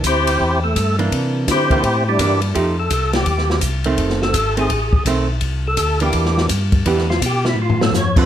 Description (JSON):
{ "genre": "soul jazz organ trio", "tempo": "167 BPM", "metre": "4/4", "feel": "swing 64% on 8ths", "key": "C mixolydian", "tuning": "A4 = 438 Hz", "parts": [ { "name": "archtop guitar, miked and amplified", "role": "accompaniment", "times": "0.0-8.3 s", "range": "D3 to A4", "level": "-21 LUFS", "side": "right 4 dB", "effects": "none" }, { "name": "mellow tonewheel organ", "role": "bass", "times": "0.0-8.3 s", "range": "F#1 to D3", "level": "-20 LUFS", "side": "equal", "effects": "overdrive, chorus vibrato, slow rotary speaker" }, { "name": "open jazz drum kit", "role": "drums", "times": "0.0-8.2 s", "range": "crash cymbal, hi-hat, kick drum, ride cymbal, snare drum, toms", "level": "-20 LUFS", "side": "left 1 dB", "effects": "none" }, { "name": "percussive tonewheel organ", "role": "melody", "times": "0.1-8.3 s", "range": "G3 to Db5", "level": "-19 LUFS", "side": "equal", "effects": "slow rotary speaker, overdrive, chorus vibrato, plate reverb" } ], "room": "light reverb", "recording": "none", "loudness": "-15 LUFS", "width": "side -10 dB against mid", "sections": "0.0-8.3 A section", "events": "tonewheel organ solo 0.0-8.3; drum fill 7.6-7.9", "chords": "0.0 C9; 2.5 F9; 4.0 F#dim7; 5.4 C9; 6.9 Em7; 7.6 F6" }